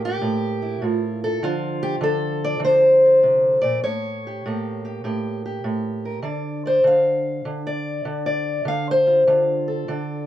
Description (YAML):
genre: acoustic country blues, solo or duo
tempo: 100 BPM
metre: 4/4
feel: swing 67% on 8ths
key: D minor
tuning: A4 = 441 Hz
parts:
  - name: fingerpicked steel-string acoustic guitar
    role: solo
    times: 0.0-10.3 s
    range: A2 to F5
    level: -18 LUFS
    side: equal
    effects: none
room: moderate studio reverb, RT60 0.6 s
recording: none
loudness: -18 LUFS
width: side -12 dB against mid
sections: 0.0-6.2 A section; 6.2-10.3 B section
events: steel-string acoustic guitar solo 6.2-10.3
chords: 0.0 A5; 1.4 Dm7; 3.8 A7b9; 6.2 Dm7